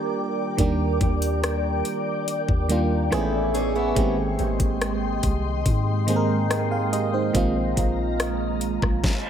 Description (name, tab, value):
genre	contemporary R&B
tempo	71 BPM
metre	4/4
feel	straight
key	Eb major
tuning	A4 = 440 Hz
part	FM electric piano	accompaniment	0.0-9.1 s	Eb3 to G5	-26 LUFS	right 3 dB	chorus, analog delay
part	glassy FM pad	sustained chords	0.0-9.0 s	Ab3 to D6	-28 LUFS	left 1 dB	ensemble chorus, built-in reverb, phaser
part	soft 808-style bass	bass	0.6-9.0 s	Ab1 to Ab2	-26 LUFS	left 1 dB	none
part	smooth R&B drum kit	drums	0.6-9.2 s	hi-hat, kick drum, rim click, snare drum	-25 LUFS	left 1 dB	none
part	picked old ladder-braced acoustic guitar	arpeggios	3.1-4.2 s	Cb4 to A4	-28 LUFS	left 2 dB	analog delay
part	reverse cymbal	sound effects	9.2-9.3 s	none	-34 LUFS	right 3 dB	none
room	light reverb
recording	echo-heavy mix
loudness	-21 LUFS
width	side -9 dB against mid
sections	0.0-9.3 A section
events	reverse cymbal 9.2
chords	0.0 Ebmaj7; 3.1 Amaj7; 4.0 Abmaj7; 7.3 Bb7sus4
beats	| 0.58 1.43 2.27 3.12 | 3.96 4.81 5.66 6.50 | 7.34 8.19 9.04